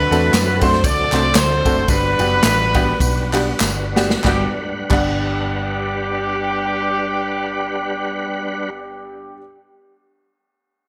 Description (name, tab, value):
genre	uptempo gospel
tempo	91-121 BPM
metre	4/4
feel	swing 56% on 8ths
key	G major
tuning	A4 = 441 Hz
part	warm horn section	melody	0.0-9.4 s	D4 to D5	-23 LUFS	equal	none
part	clear grand piano	accompaniment	0.0-9.4 s	G2 to F#5	-26 LUFS	equal	none
part	tonewheel organ	sustained chords	0.0-8.7 s	F#3 to F#5	-28 LUFS	equal	slow rotary speaker, overdrive, chorus vibrato
part	hollow-body short-scale fingered electric bass	bass	0.0-9.4 s	F#1 to F#2	-25 LUFS	equal	none
part	swinging big-band drum kit	drums	0.1-5.1 s	crash cymbal, kick drum, ride cymbal, snare drum	-23 LUFS	equal	gated reverb
part	tambourine and handclaps	percussion	0.1-5.1 s	none	-28 LUFS	equal	none
room	moderate plate reverb, RT60 1.8 s, small room ambience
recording	bright 1980s-style digital production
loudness	-18 LUFS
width	mono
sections	0.0-4.2 A section; 4.2-9.5 B section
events	slowing down 0.0-4.2; drum fill 3.6-4.2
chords	0.0 D7; 1.9 Gmaj7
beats	0.34 0.84 1.35 | 1.88 2.43 3.01 3.61 | 4.25 4.91 5.56 6.22 | 6.88 7.54 8.20 8.86